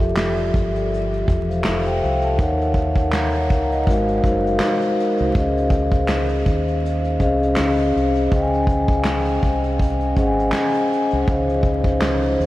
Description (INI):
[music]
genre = lo-fi hip hop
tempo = 81 BPM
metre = 4/4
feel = swing 56% on 16ths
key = Db major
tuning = A4 = 440 Hz
[part]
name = vibraphone with soft mallets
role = accompaniment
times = 0.0-12.5 s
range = F3 to Bb5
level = -20 LUFS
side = left 1 dB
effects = cassette tape
[part]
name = deep dub fingered electric bass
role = bass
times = 0.0-12.5 s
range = E1 to Eb2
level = -23 LUFS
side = equal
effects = none
[part]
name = vintage brush drum kit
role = drums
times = 0.0-12.5 s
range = handclaps, hi-hat, kick drum, snare drum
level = -22 LUFS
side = equal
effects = none
[part]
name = mellow French horn section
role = sustained chords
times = 11.3-12.5 s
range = F3 to C5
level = -27 LUFS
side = equal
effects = none
[sound]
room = moderate huge ambient reverb, RT60 8.1 s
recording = dreamy mix soaked in reverb, vinyl crackle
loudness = -17 LUFS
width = side -16 dB against mid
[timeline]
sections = 0.0-11.3 A section; 11.3-12.5 B section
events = none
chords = 0.0 Fmaj9; 2.4 Ebm9; 3.9 Ab13; 5.4 Dbmaj9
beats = 0.17 0.91 1.65 | 2.39 3.13 3.87 4.61 | 5.35 6.09 6.84 7.58 | 8.32 9.06 9.80 10.54 | 11.28 12.02